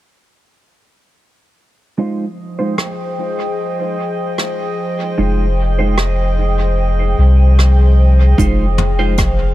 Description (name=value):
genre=ambient dub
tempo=75 BPM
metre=4/4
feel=straight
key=F minor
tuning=A4 = 440 Hz
part: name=airy breathy pad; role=sustained chords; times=2.2-9.5 s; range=F3 to G5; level=-21 LUFS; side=left 2 dB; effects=chorus, vintage 12-bit sampler grit
part: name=clean electric guitar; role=stabs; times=2.0-9.1 s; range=Ab3 to C5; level=-23 LUFS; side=right 3 dB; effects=wide subtle chorus, low-pass filter, dub echo
part: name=drifting glass-harmonics texture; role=texture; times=2.7-9.5 s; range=Eb5 to F5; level=-28 LUFS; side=right 4 dB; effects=chorus, built-in reverb
part: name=soft brush drum kit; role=drums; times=2.8-9.4 s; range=hi-hat, rim click, toms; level=-23 LUFS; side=right 1 dB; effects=dub echo
part: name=soft dub sub bass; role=bass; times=5.2-9.5 s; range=F1 to C2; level=-12 LUFS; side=equal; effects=none
part: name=electronic kick drum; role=drums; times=8.4-9.4 s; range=none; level=-17 LUFS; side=equal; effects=overdrive
room=small room ambience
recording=none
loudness=-13 LUFS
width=side -15 dB against mid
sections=2.0-8.4 A section; 8.4-9.5 B section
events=none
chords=2.0 Fm7